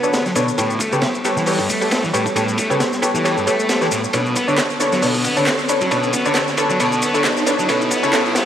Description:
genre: breakbeat, breaks.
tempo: 135 BPM.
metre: 4/4.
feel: swing 55% on 16ths.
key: B minor.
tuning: A4 = 438 Hz.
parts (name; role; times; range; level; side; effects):
phased analog pad; sustained chords; 0.0-8.5 s; D3 to C#5; -25 LUFS; equal; phaser, chorus, sidechain pumping.
sludgy distorted guitar; riff; 0.0-8.5 s; G2 to B3; -22 LUFS; equal; overdrive, tube saturation, low-pass filter, tape echo.
orchestra-hit-like synth stab; stabs; 0.0-8.2 s; C#4 to C#5; -20 LUFS; equal; built-in reverb, tape echo.
electronic shaker and handclaps; drums; 0.0-8.5 s; none; -26 LUFS; left 1 dB; none.
riser; sound effects; 0.1-8.5 s; none; -28 LUFS; right 1 dB; none.
crunchy breakbeat drum kit; drums; 0.1-8.5 s; hi-hat, kick drum, ride cymbal, snare drum; -23 LUFS; equal; high-pass filter on kick, high-pass filter on cymbals, high-pass filter on hats, high-pass filter on snare, high-pass filter on room.
room: moderate lush hall reverb, RT60 2.0 s, small room ambience.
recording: dry, gritty hardware recording, vinyl crackle, high-pass filter.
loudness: -15 LUFS.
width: side -9 dB against mid.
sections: 0.0-8.5 A section.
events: build-up 0.0-8.5; filter sweep on distorted electric guitar 0.0-8.5; filter sweep on synth stab 0.0-8.5.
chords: 0.0 Bm9; 0.6 A9; 4.1 Bm9; 7.7 A9.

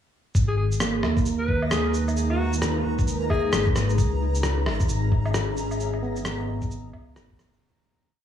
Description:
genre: future garage.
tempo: 132 BPM.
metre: 4/4.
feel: swing 61% on 16ths.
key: G# minor.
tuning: A4 = 440 Hz.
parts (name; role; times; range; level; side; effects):
electronic kick drum; drums; 0.3-7.4 s; none; -24 LUFS; equal; none.
backwards swelling texture; texture; 1.1-7.6 s; A#5; -38 LUFS; left 2 dB; built-in reverb.
granular cloud pad; sustained chords; 1.8-7.6 s; G#3 to E5; -32 LUFS; equal; built-in reverb, vintage 12-bit sampler grit, sidechain pumping.
dark detuned saw bass; bass; 0.4-7.6 s; G#1 to D#2; -26 LUFS; equal; none.
electronic shaker, rim click and woodblock; drums; 0.4-7.6 s; none; -28 LUFS; left 1 dB; none.
growling alto saxophone; melody; 0.5-3.7 s; F#4 to B4; -30 LUFS; left 4 dB; analog delay.
overdriven tine electric piano; accompaniment; 0.8-7.6 s; A#3 to B3; -30 LUFS; right 5 dB; sidechain pumping, tape echo.
room: light reverb, digital ambience.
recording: echo-heavy mix, studio ambience.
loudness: -22 LUFS.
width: side -10 dB against mid.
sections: 0.3-7.6 groove.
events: fade-out 5.2-7.6.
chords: 0.3 G#madd9; 4.0 C#m9.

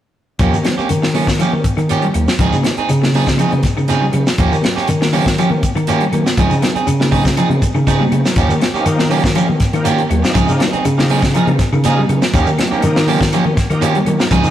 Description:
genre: afrobeat.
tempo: 121 BPM.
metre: 4/4.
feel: straight.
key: Eb mixolydian.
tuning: A4 = 439 Hz.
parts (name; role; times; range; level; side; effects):
clean electric guitar; arpeggios; 0.4-14.5 s; Db3 to G3; -22 LUFS; left 2 dB; none.
electric guitar at the edge of break-up; stabs; 0.4-14.5 s; F3 to Ab4; -19 LUFS; right 4 dB; spring reverb.
fingered electric bass; bass; 0.4-14.5 s; Db2 to Eb3; -17 LUFS; equal; none.
tight funk drum kit; drums; 0.4-14.4 s; hi-hat, kick drum, snare drum; -18 LUFS; equal; none.
shekere; percussion; 0.4-14.5 s; none; -27 LUFS; right 1 dB; none.
congas; percussion; 0.5-14.2 s; none; -22 LUFS; equal; none.
claves; percussion; 0.6-14.2 s; none; -35 LUFS; left 8 dB; none.
bright tonewheel organ; accompaniment; 8.4-14.5 s; F3 to Bb4; -24 LUFS; left 1 dB; slow rotary speaker, overdrive, chorus vibrato.
room: moderate stone room reverb, RT60 1.3 s.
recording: rough rehearsal-room recording.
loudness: -12 LUFS.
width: side -11 dB against mid.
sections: 0.4-14.5 A section.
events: drum fill 7.9-8.4.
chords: 0.4 Eb9; 2.4 Dbmaj9; 4.4 Eb9; 6.4 Dbmaj9; 8.4 Eb9; 10.4 Dbmaj9; 12.3 Eb9.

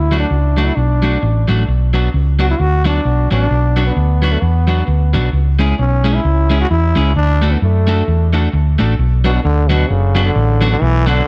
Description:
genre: ska.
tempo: 131 BPM.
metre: 4/4.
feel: swing 58% on 8ths.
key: B dorian.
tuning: A4 = 441 Hz.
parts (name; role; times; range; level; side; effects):
growling trombone; melody; 0.0-11.3 s; B2 to F#4; -23 LUFS; equal; analog delay.
hollow-body short-scale fingered electric bass; bass; 0.0-11.2 s; F#1 to F#2; -16 LUFS; equal; none.
electric guitar at the edge of break-up; accompaniment; 0.1-11.2 s; F#3 to A4; -22 LUFS; equal; spring reverb.
room: light reverb, studio reverb.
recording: none.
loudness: -14 LUFS.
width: mono.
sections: 0.0-9.0 A section; 9.0-11.3 B section.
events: none.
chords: 0.0 D; 1.7 Bm; 5.3 C#m; 7.2 D; 9.0 Bm.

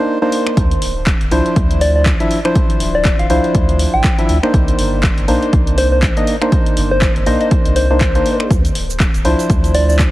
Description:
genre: deep house.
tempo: 121 BPM.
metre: 4/4.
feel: swing 58% on 16ths.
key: D phrygian.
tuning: A4 = 440 Hz.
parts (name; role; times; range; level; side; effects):
percussive organ stab; stabs; 0.0-10.1 s; F3 to E5; -17 LUFS; equal; chorus, vintage 12-bit sampler grit, sidechain pumping, tape echo.
punchy analog drum machine; drums; 0.3-10.1 s; finger snaps, handclaps, hi-hat, shaker; -24 LUFS; equal; none.
warm sub bass; bass; 0.6-10.1 s; D1 to D2; -17 LUFS; equal; none.
electronic kick drum; drums; 0.6-10.1 s; none; -15 LUFS; equal; overdrive.
soft struck synth lead; melody; 1.8-10.0 s; C5 to G5; -19 LUFS; left 1 dB; chorus, tape echo.
room: light reverb, digital ambience.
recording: heavily compressed radio sound.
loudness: -12 LUFS.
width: side -16 dB against mid.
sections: 0.0-10.1 A section.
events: break 0.0-0.6.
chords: 0.0 Cm9; 0.6 Dm9; 4.5 Cm9; 8.5 Dm9.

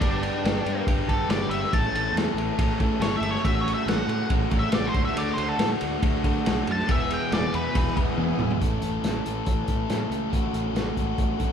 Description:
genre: classic rock.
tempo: 140 BPM.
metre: 4/4.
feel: straight.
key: A mixolydian.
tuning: A4 = 440 Hz.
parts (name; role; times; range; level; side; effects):
octave-fuzz lead guitar; melody; 0.0-8.0 s; D4 to A5; -29 LUFS; equal; distortion.
biting overdriven guitar; riff; 0.0-11.5 s; E2 to A4; -31 LUFS; left 9 dB; none.
overdriven electric guitar; riff; 0.0-11.5 s; D3 to B4; -30 LUFS; right 5 dB; none.
growling fingered electric bass; bass; 0.0-11.5 s; E1 to D3; -31 LUFS; equal; overdrive.
vintage drum kit; drums; 0.0-11.5 s; hi-hat, kick drum, ride cymbal, snare drum, toms; -26 LUFS; equal; none.
tonewheel organ; sustained chords; 1.7-8.6 s; B3 to F#5; -40 LUFS; right 1 dB; none.
room: moderate large studio reverb, RT60 0.9 s.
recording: band playing live in one room.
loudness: -22 LUFS.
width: side -8 dB against mid.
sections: 0.0-8.6 A section; 8.6-11.5 B section.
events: lead electric guitar solo 0.0-8.6; drum fill 8.2-8.6.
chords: 0.0 G; 1.7 A; 3.4 F#m/A; 4.9 Dadd9; 6.9 E; 8.6 A; 10.3 F#m/A.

